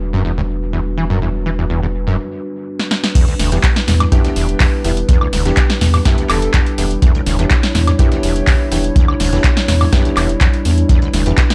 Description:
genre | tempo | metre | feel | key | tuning
acid house | 124 BPM | 4/4 | straight | E dorian | A4 = 440 Hz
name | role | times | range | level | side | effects
dark analog pad | sustained chords | 0.0-11.5 s | G3 to C#5 | -25 LUFS | equal | lush chorus, sidechain pumping
saturated sub bass | bass | 0.0-11.3 s | E1 to E2 | -20 LUFS | equal | sidechain pumping
overdriven acid bass | riff | 0.1-11.3 s | E1 to E3 | -22 LUFS | equal | tube saturation, ensemble chorus
electro analog drum machine | drums | 2.8-11.5 s | crash cymbal, handclaps, hi-hat, snare drum, woodblock | -22 LUFS | equal | none
dusty soul sampler-style drum kit | drums | 3.2-11.5 s | hi-hat, snare drum | -33 LUFS | equal | none
electronic kick drum | drums | 3.2-11.5 s | none | -16 LUFS | equal | none
warm baby grand piano | stabs | 3.5-11.4 s | B3 to G4 | -27 LUFS | equal | dub echo
airy dreamy lead | melody | 5.5-6.5 s | G4 to A4 | -29 LUFS | equal | chorus, dub echo
room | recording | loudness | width
light reverb | dark, warm production | -15 LUFS | mono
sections
0.0-3.2 A section; 3.2-11.5 B section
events
break 2.2-3.2; drum fill 2.8-3.2; drop 3.2-11.5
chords
0.0 Em7

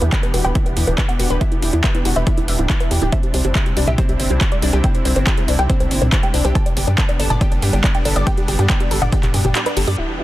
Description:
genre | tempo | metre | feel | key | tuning
uplifting trance | 140 BPM | 4/4 | straight | unclear | A4 = 440 Hz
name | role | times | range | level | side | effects
wide unison pluck | melody | 0.0-9.9 s | E4 to A5 | -24 LUFS | right 1 dB | sidechain pumping, tape echo
supersaw pad | sustained chords | 0.0-10.2 s | C3 to G4 | -27 LUFS | right 1 dB | sidechain pumping, low-pass filter
analog pluck | arpeggios | 0.0-10.2 s | G3 to E5 | -25 LUFS | left 2 dB | chorus, sidechain pumping, dub echo
tight sequencer bass | bass | 0.0-10.2 s | D1 to G2 | -18 LUFS | equal | sidechain pumping
big-room dance drum kit | drums | 0.0-10.0 s | handclaps, hi-hat, toms | -23 LUFS | equal | overdrive, sidechain pumping on hats, low-pass filter on hats, low-pass filter on snare, sidechain pumping on cymbals, low-pass filter on cymbals, sidechain pumping on toms, low-pass filter on toms
electronic kick drum | drums | 0.1-9.2 s | none | -18 LUFS | equal | overdrive
room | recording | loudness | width
little or no reverb | dense, heavily limited modern master | -15 LUFS | side -16 dB against mid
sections
0.0-10.0 A section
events
filter sweep on supersaw synth 0.0-10.0; kick drops out 9.6-10.0; band accent 9.6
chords
0.0 Em7; 3.1 Cadd9; 6.6 G

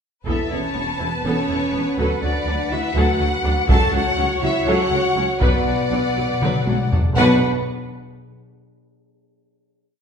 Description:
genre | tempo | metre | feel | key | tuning
cinematic, epic orchestral film score | 244 BPM (eighths) | 7/8 | straight | B minor | A4 = 440 Hz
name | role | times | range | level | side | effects
rich symphonic violin section | melody | 0.3-7.5 s | B4 to A5 | -26 LUFS | left 3 dB | none
warm symphonic violin section | second line | 0.3-7.5 s | B4 to A5 | -25 LUFS | left 2 dB | none
rich studio viola section | accompaniment | 0.3-7.5 s | F#3 to B4 | -26 LUFS | right 1 dB | none
mellow French horn section | sustained chords | 0.3-7.4 s | B3 to A4 | -24 LUFS | left 1 dB | none
mellow tuba | bass | 0.3-7.4 s | E1 to D2 | -28 LUFS | right 2 dB | none
rich symphonic cello section | bass | 0.3-7.5 s | C#2 to B2 | -28 LUFS | right 2 dB | none
rich symphonic double bass section | bass | 0.3-7.5 s | E1 to D2 | -27 LUFS | right 2 dB | none
solo taiko drums | drums | 0.3-7.2 s | none | -20 LUFS | equal | none
timpani | percussion | 5.4-7.4 s | B2 | -27 LUFS | left 2 dB | none
room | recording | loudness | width
wet recital hall reverb, RT60 1.4 s | recorded in a church or concert hall | -17 LUFS | side -7 dB against mid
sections
0.3-7.2 theme; 7.2-9.0 final chord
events
timpani fill 5.4-7.2; drum fill 6.4-7.2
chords
0.3 Esus4; 2.0 Bm7/D; 3.7 F#m/C#; 5.4 Bm

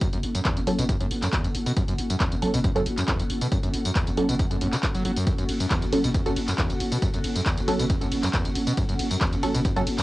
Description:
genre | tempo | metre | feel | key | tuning
driving peak-time techno | 137 BPM | 4/4 | straight | F# minor | A4 = 440 Hz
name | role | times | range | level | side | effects
screaming distorted acid line | riff | 0.0-10.0 s | E2 to F#3 | -28 LUFS | equal | distortion, lush chorus, sidechain pumping, cassette tape
electronic kick drum | drums | 0.0-9.7 s | none | -26 LUFS | equal | studio reverb, cassette tape
punchy analog drum machine | drums | 0.0-10.0 s | handclaps, hi-hat, ride cymbal, tambourine | -30 LUFS | equal | studio reverb, cassette tape
ethereal airy pad | texture | 0.0-10.0 s | C#4 to F#5 | -33 LUFS | right 1 dB | ensemble chorus, built-in reverb, phaser, sidechain pumping, cassette tape
growling 808-style bass | bass | 0.1-10.0 s | F#1 | -30 LUFS | equal | overdrive, sidechain pumping, low-pass filter
filtered dub chord stab | stabs | 0.7-9.8 s | F#3 to A4 | -26 LUFS | right 1 dB | phaser, cassette tape, sidechain pumping, tape echo
room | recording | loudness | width
light reverb | home recording on cassette | -22 LUFS | side -18 dB against mid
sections
0.0-10.0 A section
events
none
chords
0.0 F#m

